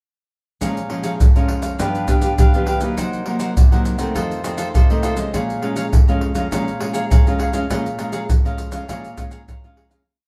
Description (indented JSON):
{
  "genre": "samba and choro",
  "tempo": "101 BPM",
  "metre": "4/4",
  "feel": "straight",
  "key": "Bb minor",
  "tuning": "A4 = 440 Hz",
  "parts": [
    { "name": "cavaquinho", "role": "accompaniment", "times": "0.6-10.1 s", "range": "D4 to Bb5", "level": "-27 LUFS", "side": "equal", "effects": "none" },
    { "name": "nylon-string guitar", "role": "accompaniment", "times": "0.6-10.0 s", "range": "F2 to F4", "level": "-26 LUFS", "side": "equal", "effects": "none" },
    { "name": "maracas, surdo and pandeiro", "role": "percussion", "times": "0.6-10.1 s", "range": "none", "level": "-19 LUFS", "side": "equal", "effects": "none" }
  ],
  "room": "wet large studio reverb, RT60 0.9 s",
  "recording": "band playing live in one room",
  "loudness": "-18 LUFS",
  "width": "mono",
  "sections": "0.6-10.1 A section",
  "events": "fade-out 7.7-10.1",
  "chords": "0.6 Bbm7; 1.8 G7; 3.0 Cm7b5; 4.2 F7; 5.3 Bbm7"
}